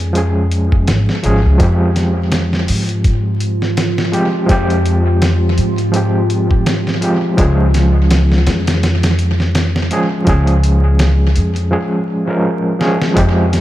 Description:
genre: trip hop.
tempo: 83 BPM.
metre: 4/4.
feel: swing 57% on 16ths.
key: unclear.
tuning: A4 = 440 Hz.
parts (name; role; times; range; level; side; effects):
overdriven reed electric piano; accompaniment; 0.0-13.6 s; F3 to Bb4; -16 LUFS; equal; tremolo, low-pass filter, tape echo.
upright bass; bass; 0.0-13.6 s; Ab1 to Ab2; -14 LUFS; equal; tube saturation.
dusty soul sampler-style drum kit; drums; 0.0-13.6 s; hi-hat, kick drum, snare drum; -18 LUFS; equal; small room ambience, tape echo.
warbly tape-like pad; sustained chords; 2.6-13.6 s; F3 to F4; -24 LUFS; left 2 dB; chorus, built-in reverb, phaser.
room: light reverb.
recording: echo-heavy mix, vinyl crackle.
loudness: -12 LUFS.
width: side -14 dB against mid.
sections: 0.0-13.2 A section.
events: break 11.7-13.2; drum fill 12.8-13.2.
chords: 0.0 Db; 1.6 Fmadd9; 7.4 Db.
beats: 0.15 0.88 | 1.60 2.32 3.05 3.77 | 4.49 5.22 5.94 6.66 | 7.38 8.11 8.83 9.55 | 10.28 11.00 11.72 12.45 | 13.17.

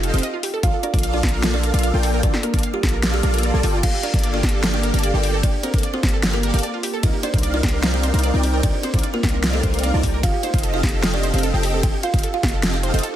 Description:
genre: future bass.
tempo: 150 BPM.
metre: 4/4.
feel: half-time.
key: G minor.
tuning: A4 = 442 Hz.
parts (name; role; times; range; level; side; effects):
kalimba; melody; 0.0-13.2 s; G3 to G5; -27 LUFS; right 2 dB; sidechain pumping, digital delay.
wide unison pluck; arpeggios; 0.0-13.2 s; F4 to F5; -29 LUFS; right 3 dB; sidechain pumping, dub echo.
supersaw chords; riff; 0.0-13.0 s; Bb3 to A5; -25 LUFS; equal; ensemble chorus, sidechain pumping.
warm 808-style bass; bass; 0.0-13.0 s; F1 to C2; -21 LUFS; equal; tube saturation, sidechain pumping.
dubstep drum kit; drums; 0.0-13.1 s; crash cymbal, hi-hat, ride cymbal, snare drum; -25 LUFS; equal; overdrive.
electronic kick drum; drums; 0.6-12.5 s; none; -20 LUFS; equal; overdrive.
room: digital ambience.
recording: dense, heavily limited modern master.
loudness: -17 LUFS.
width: side -12 dB against mid.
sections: 0.0-13.2 A section.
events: none.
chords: 0.0 F9; 0.6 Bbmaj7; 7.0 Cm11; 10.2 F9.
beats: 0.23 | 0.63 1.03 1.43 1.83 | 2.23 2.63 3.03 3.43 | 3.83 4.23 4.63 5.03 | 5.43 5.83 6.23 6.63 | 7.03 7.43 7.83 8.23 | 8.63 9.03 9.43 9.83 | 10.23 10.63 11.03 11.43 | 11.83 12.23 12.63 13.03.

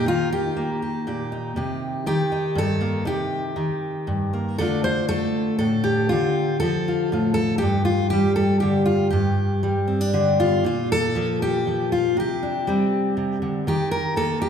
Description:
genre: folk, solo fingerstyle acoustic guitar.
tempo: 119 BPM.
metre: 3/4.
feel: straight.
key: C dorian.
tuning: A4 = 442 Hz.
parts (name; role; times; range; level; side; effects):
fingerpicked steel-string acoustic guitar; solo; 0.0-14.5 s; G2 to C5; -20 LUFS; equal; none.
room: wet scoring stage reverb, RT60 1.8 s.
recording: recorded in a church or concert hall.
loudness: -20 LUFS.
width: side -7 dB against mid.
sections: 0.0-10.7 A section; 10.7-14.5 B section.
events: none.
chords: 0.0 Eb; 1.6 Cm7; 4.6 Dm; 7.6 G5; 10.7 Bb5; 12.2 Csus2; 13.7 Eb5.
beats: | 0.06 0.56 1.07 | 1.57 2.06 2.56 | 3.06 3.56 4.07 | 4.59 5.10 5.62 | 6.12 6.63 7.13 | 7.63 8.13 8.63 | 9.13 9.63 10.14 | 10.66 11.17 11.68 | 12.18 12.69 13.18 | 13.68 14.18.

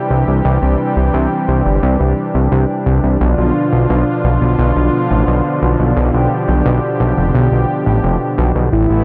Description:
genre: synthwave.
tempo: 87 BPM.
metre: 4/4.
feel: straight.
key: unclear.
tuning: A4 = 440 Hz.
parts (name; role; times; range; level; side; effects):
warm analog pad; sustained chords; 0.0-9.0 s; B2 to G4; -18 LUFS; equal; lush chorus.
fat analog bass; bass; 0.1-9.0 s; F1 to C2; -16 LUFS; equal; none.
soft octave-layered synth lead; melody; 8.7-9.0 s; E4; -17 LUFS; equal; chorus.
room: light reverb.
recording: none.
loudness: -14 LUFS.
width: mono.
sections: 0.0-9.0 A section.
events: none.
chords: 0.0 Cadd9; 3.2 Bdim.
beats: | 0.45 1.14 1.83 2.52 | 3.21 3.90 4.59 5.28 | 5.97 6.66 7.35 8.04 | 8.73.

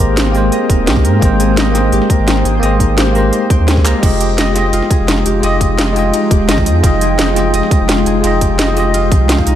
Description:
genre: liquid drum and bass.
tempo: 171 BPM.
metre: 4/4.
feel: straight.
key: F minor.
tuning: A4 = 441 Hz.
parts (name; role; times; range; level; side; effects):
bell-like tine electric piano; accompaniment; 0.0-9.6 s; Ab3 to G5; -16 LUFS; equal; fast stereo tremolo, vintage 12-bit sampler grit, tape echo.
shimmering ambient pad; sustained chords; 0.0-9.6 s; F3 to G5; -20 LUFS; left 1 dB; chorus, built-in reverb.
Celtic harp; arpeggios; 0.0-9.6 s; Eb4 to G5; -22 LUFS; equal; ping-pong delay.
warm sub bass; bass; 0.0-9.6 s; Eb1 to Ab2; -15 LUFS; equal; none.
garage drum kit; drums; 0.2-9.5 s; crash cymbal, handclaps, hi-hat, ride cymbal, snare drum; -18 LUFS; equal; none.
electronic kick drum; drums; 0.7-9.5 s; none; -13 LUFS; equal; none.
room: digital ambience.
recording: none.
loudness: -10 LUFS.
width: side -11 dB against mid.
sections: 0.0-9.6 A section.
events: drum fill 3.9.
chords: 0.0 Abmaj9.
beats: 0.17 0.52 0.87 | 1.22 1.57 1.93 2.28 | 2.63 2.98 3.33 3.68 | 4.03 4.38 4.73 5.08 | 5.43 5.79 6.14 6.49 | 6.84 7.19 7.54 7.89 | 8.24 8.59 8.94 9.29.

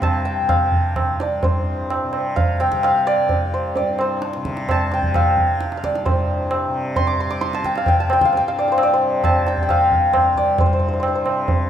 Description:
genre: indian classical, Hindustani.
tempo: 131 BPM.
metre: 5/4.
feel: straight.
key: C raga durga.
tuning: A4 = 440 Hz.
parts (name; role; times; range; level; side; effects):
santur; melody; 0.0-11.7 s; C5 to D6; -19 LUFS; left 1 dB; none.
tanpura; drone; 0.0-11.7 s; C2 to C3; -28 LUFS; left 1 dB; none.
tabla; percussion; 0.0-11.7 s; none; -20 LUFS; right 2 dB; none.
room: moderate recital hall reverb, RT60 1.7 s.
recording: minimal, uncompressed stereo recording.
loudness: -16 LUFS.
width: side -9 dB against mid.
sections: 0.0-1.4 A section; 1.4-11.7 B section.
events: speeding up 0.0-11.7.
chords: none.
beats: 0.02 0.49 0.96 | 1.43 1.90 2.36 2.83 3.29 | 3.75 4.22 4.68 5.14 5.60 | 6.06 6.51 6.97 7.43 7.88 | 8.34 8.79 9.24 9.69 10.14 | 10.59 11.04 11.49.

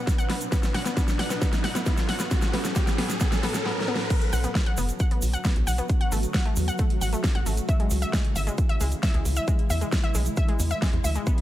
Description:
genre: uplifting trance.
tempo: 134 BPM.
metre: 4/4.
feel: straight.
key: B dorian.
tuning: A4 = 437 Hz.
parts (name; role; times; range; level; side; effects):
riser; sound effects; 0.0-4.1 s; none; -33 LUFS; equal; none.
big-room dance drum kit; drums; 0.1-11.4 s; crash cymbal, hi-hat, snare drum; -30 LUFS; equal; overdrive, sidechain pumping on hats, sidechain pumping on cymbals.
electronic kick drum; drums; 0.1-11.4 s; none; -24 LUFS; equal; overdrive.
egg shaker; percussion; 0.1-11.4 s; none; -37 LUFS; right 3 dB; none.
wide unison pluck; arpeggios; 0.2-11.3 s; G#3 to F#5; -32 LUFS; left 2 dB; sidechain pumping, tape echo.
tight sequencer bass; bass; 4.3-11.2 s; F#1 to E2; -25 LUFS; equal; sidechain pumping.
room: light reverb.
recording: none.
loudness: -22 LUFS.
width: side -14 dB against mid.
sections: 0.0-4.1 A section; 4.1-11.4 B section.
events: build-up 0.0-4.1; drum fill 0.0-3.7, 3.7-4.1; riser 0.0-4.1; drop 4.1-11.4.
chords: 0.0 Bm; 0.5 F#m; 4.1 Bm; 5.9 F#m/A; 7.7 C#m; 9.5 E.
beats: 0.07 | 0.52 0.97 1.42 1.86 | 2.31 2.76 3.21 3.66 | 4.10 4.55 5.00 5.45 | 5.89 6.34 6.79 7.24 | 7.69 8.13 8.58 9.03 | 9.48 9.92 10.37 10.82 | 11.27.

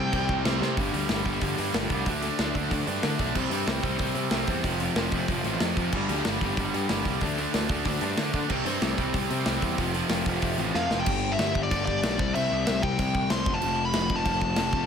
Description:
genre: punk rock.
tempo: 187 BPM.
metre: 4/4.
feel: straight.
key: G mixolydian from 11.1 s.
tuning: A4 = 440 Hz.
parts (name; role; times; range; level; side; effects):
nasal lead guitar with a parked wah; melody; 0.0-0.4, 10.8-14.9 s; D5 to C6; -28 LUFS; equal; overdrive.
overdriven electric guitar; riff; 0.0-14.9 s; F2 to D4; -30 LUFS; left 14 dB; none.
tight distorted guitar; riff; 0.0-11.1 s; F2 to D4; -30 LUFS; right 14 dB; distortion.
fuzz picked electric bass; bass; 0.0-14.9 s; F1 to D3; -31 LUFS; equal; overdrive.
big rock drum kit; drums; 0.1-14.8 s; crash cymbal, hi-hat, kick drum, snare drum; -29 LUFS; equal; none.
room: light reverb.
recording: none.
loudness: -24 LUFS.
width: side -7 dB against mid.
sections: 0.8-11.1 A section; 11.1-14.9 B section.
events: drum fill 0.6, 10.7-11.1.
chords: 0.0 C5; 0.8 G5; 2.1 D5; 3.3 C5; 4.6 F5; 5.9 G5; 7.2 D5; 8.5 C5; 9.8 F5; 11.1 G; 12.2 C; 13.5 F.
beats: 0.13 0.45 | 0.77 1.09 1.41 1.74 | 2.06 2.38 2.70 3.02 | 3.35 3.67 3.99 4.31 | 4.64 4.96 5.28 5.60 | 5.92 6.25 6.57 6.89 | 7.21 7.53 7.85 8.18 | 8.50 8.82 9.14 9.46 | 9.78 10.10 10.42 10.74 | 11.06 11.38 11.70 12.02 | 12.34 12.66 12.98 13.30 | 13.62 13.94 14.26 14.57.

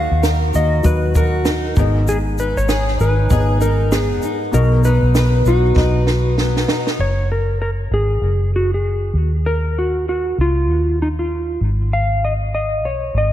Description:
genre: acoustic pop.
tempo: 98 BPM.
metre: 4/4.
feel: swing 60% on 16ths.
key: F# major.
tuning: A4 = 436 Hz.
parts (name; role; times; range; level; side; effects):
clean lap steel guitar; melody; 0.0-13.3 s; D#4 to E#5; -21 LUFS; left 1 dB; ping-pong delay.
felt-muted upright piano; accompaniment; 0.0-7.0 s; F#3 to D#5; -27 LUFS; left 5 dB; none.
fingerpicked plugged-in steel-string acoustic guitar; accompaniment; 0.0-7.1 s; G#2 to B4; -20 LUFS; equal; double-tracked left and right.
vintage muted fingered electric bass; bass; 0.0-13.3 s; F#1 to D#2; -18 LUFS; equal; none.
compact cocktail drum kit; drums; 0.2-7.0 s; kick drum, shaker, snare drum; -20 LUFS; right 1 dB; none.
room: light reverb, small room ambience.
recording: none.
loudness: -15 LUFS.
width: side -12 dB against mid.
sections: 0.0-7.0 A section; 7.0-13.3 B section.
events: drum fill 5.8-7.0.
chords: 0.0 D#m; 1.8 G#m; 4.5 B; 7.0 F#sus2; 9.1 C#add9; 11.6 G#m.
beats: 0.23 0.85 1.46 | 2.08 2.69 3.30 3.92 | 4.53 5.15 5.76 6.38 | 6.99 7.61 8.22 8.84 | 9.45 10.07 10.68 11.30 | 11.91 12.53 13.14.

